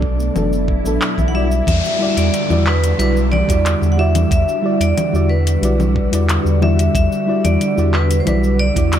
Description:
sunset chillout; 91 BPM; 4/4; straight; E minor; A4 = 440 Hz
vibraphone with hard mallets; melody; 0.0-9.0 s; B4 to F#5; -22 LUFS; left 1 dB; ping-pong delay, shimmer reverb
mellow FM electric piano; accompaniment; 0.0-9.0 s; F#3 to D5; -20 LUFS; moving between left 3 dB and right 6 dB; chorus, auto-pan, cassette tape, shimmer reverb
soft string machine; sustained chords; 0.0-9.0 s; B2 to F#4; -23 LUFS; equal; ensemble chorus, shimmer reverb
warm sub bass; bass; 0.0-9.0 s; F#1 to E2; -17 LUFS; equal
electronic kick drum; drums; 0.0-8.9 s; -19 LUFS; equal
smooth R&B drum kit; drums; 0.2-9.0 s; congas, handclaps, hi-hat, shaker; -22 LUFS; left 2 dB
swell and downlifter; sound effects; 0.6-6.9 s; -27 LUFS; left 1 dB
light reverb; -13 LUFS; side -10 dB against mid
0.0-1.7 A section; 1.7-9.0 B section
swell 0.6-1.7
0.0 Bm7; 1.7 Em9

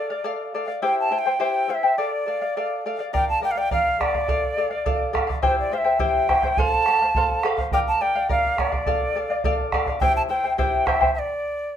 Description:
andean folk, Andean ensemble; 105 BPM; 2/4; straight; D minor; A4 = 440 Hz
hollow quena; melody; 0.0-11.8 s; C5 to A5; -23 LUFS; equal
charango; accompaniment; 0.0-11.2 s; E4 to G5; -24 LUFS; left 2 dB
bombo; percussion; 3.1-11.1 s; -25 LUFS; right 2 dB
wet studio reverb, RT60 0.6 s; minimal, uncompressed stereo recording; -20 LUFS; side -9 dB against mid
0.0-3.1 A section; 3.1-11.8 A section
stop 11.2-11.8
0.0 Dm; 0.8 C; 2.0 Dm; 3.1 Bb; 4.3 Dm; 5.4 C; 6.6 F; 7.7 Bb; 8.9 Dm; 10.0 C; 11.2 N.C.

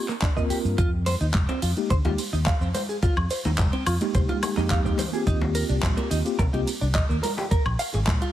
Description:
nu-disco, nu disco; 107 BPM; 4/4; straight; F minor; A4 = 440 Hz
mellow tine electric piano; accompaniment; 0.0-6.7 s; Ab3 to Bb4; -28 LUFS; left 1 dB; medium stereo tremolo, sidechain pumping, digital delay
direct-recorded clean electric guitar; riff; 0.1-8.3 s; Bb3 to F5; -30 LUFS; right 2 dB; lush chorus, digital delay
pop drum kit; drums; 0.1-8.3 s; handclaps, hi-hat, ride cymbal, shaker, woodblock; -32 LUFS; equal; overdrive
electronic kick drum; drums; 0.2-8.2 s; -24 LUFS; equal
fingered electric bass; bass; 0.5-8.2 s; F1 to D3; -26 LUFS; equal
congas; percussion; 1.1-8.2 s; -34 LUFS; left 3 dB
little or no reverb; heavily compressed radio sound, multiband compression; -22 LUFS; side -12 dB against mid
0.0-8.3 A section
0.0 Eb6 (rootless); 0.8 Fm11; 5.3 Eb6; 7.5 Bb7(no3)

